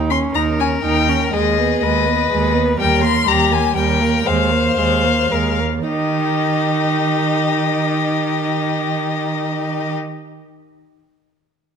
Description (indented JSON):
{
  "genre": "quick classical-period movement for string quartet",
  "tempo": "102-125 BPM",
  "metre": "3/4",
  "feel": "rubato",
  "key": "Eb major",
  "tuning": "A4 = 441 Hz",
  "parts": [
    { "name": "warm viola", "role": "accompaniment", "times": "0.0-9.9 s", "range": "G3 to Eb4", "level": "-22 LUFS", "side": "right 3 dB", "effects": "none" },
    { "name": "rich cello", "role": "bass", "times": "0.0-9.9 s", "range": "Eb2 to Eb3", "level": "-21 LUFS", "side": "right 5 dB", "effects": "none" },
    { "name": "rich violin", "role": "melody", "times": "0.1-9.9 s", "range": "Eb5 to C6", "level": "-20 LUFS", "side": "left 9 dB", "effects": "none" },
    { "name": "warm violin", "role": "second line", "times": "0.4-9.9 s", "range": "G4 to C5", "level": "-22 LUFS", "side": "left 4 dB", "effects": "none" }
  ],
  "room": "light reverb",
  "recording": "close, detailed microphones",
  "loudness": "-15 LUFS",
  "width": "side -7 dB against mid",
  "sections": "0.0-5.9 A section; 5.9-9.2 B section",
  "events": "slowing down 2.1-5.9",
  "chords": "0.0 Eb7; 1.3 Abm/Eb; 2.8 Eb; 4.3 Bb5/Eb; 5.9 Eb",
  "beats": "0.35 0.84 | 1.34 1.82 2.31 | 2.79 3.27 3.76 | 4.26 4.77 5.31 | 5.88 6.43 6.98 | 7.53 8.08 8.63"
}